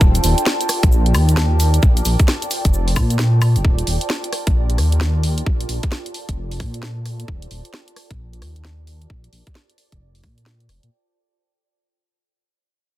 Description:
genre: UK garage, two-step garage.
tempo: 132 BPM.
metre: 4/4.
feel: swing 62% on 16ths.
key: Eb lydian.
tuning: A4 = 440 Hz.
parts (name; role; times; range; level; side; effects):
ethereal airy pad; sustained chords; 0.0-10.9 s; F4 to D5; -30 LUFS; right 1 dB; ensemble chorus, built-in reverb, sidechain pumping.
dark detuned saw bass; bass; 0.0-10.9 s; Eb1 to Bb2; -17 LUFS; equal; none.
electronic kick drum; drums; 0.0-10.3 s; none; -16 LUFS; equal; overdrive, studio reverb.
garage drum kit; drums; 0.0-10.9 s; hi-hat, rim click, shaker, snare drum, woodblock; -24 LUFS; equal; studio reverb.
airy breathy pad; texture; 0.0-10.9 s; D5 to A5; -28 LUFS; right 1 dB; chorus, sidechain pumping.
room: little or no reverb.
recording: dense, heavily limited modern master.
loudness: -15 LUFS.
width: side -15 dB against mid.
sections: 0.0-10.9 A section.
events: fade-out on analog synth pad 0.0-10.9; fade-out 0.0-10.9; filter sweep on detuned saw bass 0.0-10.9; filter sweep on ambient pad 0.0-10.9.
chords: 0.0 Ebmaj9; 1.8 Bbmaj9; 3.6 Ebmaj9; 5.5 Bbmaj9; 7.3 Ebmaj9; 9.1 Bbmaj9.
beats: | 0.01 0.46 0.92 1.37 | 1.83 2.28 2.73 3.19 | 3.64 4.10 4.55 5.01 | 5.46 5.92 6.37 6.83 | 7.28 7.74 8.19 8.64 | 9.10 9.55 10.01 10.46.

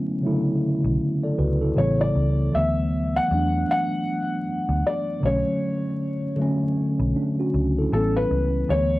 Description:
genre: lo-fi hip hop.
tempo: 78 BPM.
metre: 4/4.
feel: swing 59% on 16ths.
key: B minor.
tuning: A4 = 437 Hz.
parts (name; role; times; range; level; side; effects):
mellow tine electric piano; accompaniment; 0.0-9.0 s; C#3 to D5; -23 LUFS; equal; medium stereo tremolo, low-pass filter, cassette tape.
vintage muted picked electric bass; bass; 0.8-9.0 s; A1 to E2; -24 LUFS; equal; none.
felt-muted upright piano; melody; 1.8-9.0 s; A4 to F#5; -25 LUFS; left 1 dB; low-pass filter, cassette tape.
room: moderate studio reverb, RT60 0.5 s.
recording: home recording on cassette, vinyl crackle.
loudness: -20 LUFS.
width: side -18 dB against mid.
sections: 0.0-9.0 A section.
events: none.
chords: 0.0 Bm9; 1.8 A7; 2.5 D69; 5.2 Bm9 (rootless); 7.9 A7.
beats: 0.23 0.99 1.76 | 2.53 3.30 4.07 4.84 | 5.61 6.38 7.15 7.92 | 8.69.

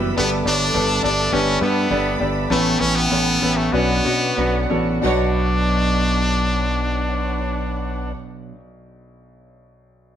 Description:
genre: piano-driven pop.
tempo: 89-105 BPM.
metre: 4/4.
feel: straight.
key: B minor.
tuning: A4 = 441 Hz.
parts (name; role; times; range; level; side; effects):
warm symphonic violin section; second line; 0.0-8.1 s; D4 to B5; -30 LUFS; equal; none.
clear concert grand piano; accompaniment; 0.0-10.2 s; B1 to D5; -23 LUFS; equal; none.
percussive tonewheel organ; sustained chords; 0.0-8.1 s; B2 to E6; -31 LUFS; right 1 dB; slow rotary speaker.
twelve-string electric guitar; riff; 0.0-8.6 s; A2 to C#5; -29 LUFS; right 4 dB; none.
picked electric bass; bass; 0.0-8.1 s; F#1 to B2; -23 LUFS; equal; none.
brilliant trumpet; melody; 0.2-8.1 s; A3 to D4; -22 LUFS; left 1 dB; none.
room: moderate stone room reverb, RT60 1.1 s.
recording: band playing live in one room.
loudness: -17 LUFS.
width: side -9 dB against mid.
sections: 0.0-5.0 A section; 5.0-7.7 B section.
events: slowing down 0.2-5.0.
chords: 0.2 Gadd9; 2.5 Aadd9; 3.7 Bmadd9.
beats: | 0.18 0.75 1.33 1.91 | 2.51 3.12 3.74 4.38 | 5.04 5.71 6.38 7.06.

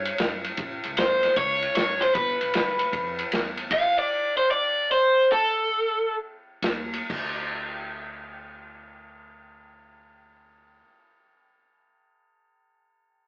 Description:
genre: electric blues shuffle.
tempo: 123-154 BPM.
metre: 4/4.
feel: swing 66% on 8ths.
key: unclear.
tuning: A4 = 440 Hz.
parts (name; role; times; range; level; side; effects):
overdriven semi-hollow guitar; melody; 0.0-6.2 s; A4 to F5; -21 LUFS; equal; none.
upright bass; bass; 0.0-3.9, 6.6-10.8 s; G1 to F#2; -42 LUFS; equal; none.
vintage drum kit; drums; 0.1-3.8, 6.6-7.2 s; crash cymbal, kick drum, ride cymbal, snare drum; -29 LUFS; equal; none.
room: moderate studio reverb, RT60 0.5 s.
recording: rough rehearsal-room recording, tube saturation, AM radio sound.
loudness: -22 LUFS.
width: side -24 dB against mid.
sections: 0.0-7.1 A section; 7.1-11.0 B section.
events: slowing down 3.7-7.1.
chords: 0.0 A; 2.2 G7; 3.7 D5; 6.6 N.C..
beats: 0.20 | 0.59 0.98 1.37 1.76 | 2.15 2.54 2.93 3.32 | 3.71 4.10 4.50 4.90 | 5.31 5.74 6.17 6.63 | 7.10 7.59 8.08 8.56 | 9.05 9.54 10.03 10.51.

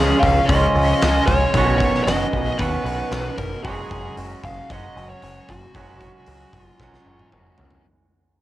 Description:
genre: rock, shoegaze and dream pop.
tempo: 114 BPM.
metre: 4/4.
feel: straight.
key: unclear.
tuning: A4 = 438 Hz.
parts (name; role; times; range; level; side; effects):
fuzz lead guitar; melody; 0.0-7.3 s; F#4 to E#5; -23 LUFS; equal; distortion, cassette tape.
fuzz guitar; riff; 0.0-7.8 s; F#2 to C#4; -29 LUFS; left 8 dB; distortion, analog chorus, cassette tape.
twangy electric guitar; riff; 0.0-7.8 s; B2 to F#4; -24 LUFS; right 4 dB; reverse reverb, cassette tape.
growling picked electric bass; bass; 0.0-7.8 s; F#1 to D#2; -23 LUFS; equal; overdrive.
huge arena drum kit; drums; 0.2-7.8 s; hi-hat, kick drum, snare drum, toms; -24 LUFS; equal; cassette tape.
room: studio ambience.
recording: home recording on cassette.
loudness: -17 LUFS.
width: side -15 dB against mid.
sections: 0.0-7.8 A section.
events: fade-out 0.0-7.8; drum fill 6.8-7.8.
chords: 0.0 C#; 1.5 Badd9; 3.6 F#sus2.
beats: 0.50 1.02 | 1.55 2.07 2.60 3.12 | 3.65 4.17 4.70 5.22 | 5.75 6.28 6.80 7.33.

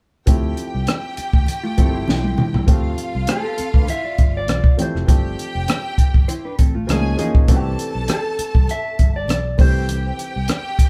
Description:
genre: lush 1970s-style soul.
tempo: 100 BPM.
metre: 4/4.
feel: swing 54% on 16ths.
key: D dorian.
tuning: A4 = 438 Hz.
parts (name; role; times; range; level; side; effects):
rich studio violin section; second line; 0.3-10.9 s; F4 to A5; -32 LUFS; equal; none.
warm baby grand piano; accompaniment; 0.3-10.9 s; E3 to G#4; -29 LUFS; equal; none.
fingered electric bass; bass; 0.3-10.8 s; F1 to D2; -26 LUFS; equal; none.
compact cocktail drum kit; drums; 0.3-10.9 s; hi-hat, kick drum, rim click, snare drum, toms; -18 LUFS; equal; none.
congas; percussion; 0.3-10.6 s; none; -32 LUFS; equal; none.
mellow electric guitar; riff; 1.6-7.0 s; A3 to D5; -31 LUFS; equal; tremolo.
mellow electric guitar; melody; 3.3-10.9 s; A4 to E5; -29 LUFS; equal; none.
room: light reverb.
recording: band playing live in one room.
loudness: -19 LUFS.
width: mono.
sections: 0.3-2.7 A section; 2.7-10.9 B section.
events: drum fill 2.1-2.7.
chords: 0.3 Dm11; 6.9 C#69; 7.5 C69; 9.6 Fmaj9 (rootless).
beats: | 0.27 0.87 1.47 2.07 | 2.67 3.28 3.88 4.48 | 5.08 5.68 6.28 6.88 | 7.48 8.09 8.69 9.29 | 9.89 10.49.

